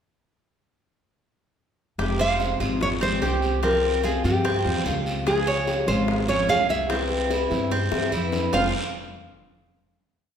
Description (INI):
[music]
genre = latin, Cuban son and guajira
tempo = 147 BPM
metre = 4/4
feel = straight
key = F harmonic minor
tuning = A4 = 440 Hz
[part]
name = picked steel-string acoustic guitar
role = accompaniment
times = 2.0-8.7 s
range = F2 to G4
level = -29 LUFS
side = left 2 dB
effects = none
[part]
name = Cuban tres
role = arpeggios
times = 2.0-8.7 s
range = C4 to F5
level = -27 LUFS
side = right 4 dB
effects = none
[part]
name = upright bass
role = bass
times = 2.0-8.7 s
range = F1 to G2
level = -28 LUFS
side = equal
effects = none
[part]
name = bongos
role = percussion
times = 2.0-8.6 s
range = none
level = -31 LUFS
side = left 4 dB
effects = none
[part]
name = guiro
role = percussion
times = 2.0-8.6 s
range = none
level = -35 LUFS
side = right 2 dB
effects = none
[part]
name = nylon-string guitar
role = melody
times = 2.2-8.7 s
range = G4 to F5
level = -25 LUFS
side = equal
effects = none
[sound]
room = wet recital hall reverb, RT60 1.3 s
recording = recorded in a church or concert hall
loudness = -21 LUFS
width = side -8 dB against mid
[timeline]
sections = 2.0-8.5 verse; 8.5-10.2 final chord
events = drum fill 7.7-8.5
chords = 2.0 Fmadd9; 3.6 Csus4; 5.3 Db; 6.9 C; 8.5 F5